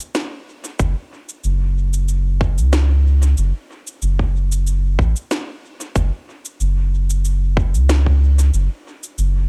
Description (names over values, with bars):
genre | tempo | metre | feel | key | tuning
ambient dub | 93 BPM | 4/4 | swing 54% on 16ths | F# minor | A4 = 439 Hz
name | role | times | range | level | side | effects
electronic cabasa and snare drum | drums | 0.0-9.3 s | none | -29 LUFS | equal | overdrive, dub echo
soft dub sub bass | bass | 0.8-9.5 s | F#1 to C#2 | -18 LUFS | equal | none
electronic kick drum | drums | 0.8-8.2 s | none | -22 LUFS | equal | overdrive
room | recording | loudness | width
little or no reverb | none | -18 LUFS | mono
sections
0.0-6.0 A section; 6.0-9.5 B section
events
none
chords
none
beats
0.15 | 0.79 1.44 2.08 2.73 | 3.38 4.02 4.67 5.31 | 5.96 6.60 7.25 7.89 | 8.54 9.18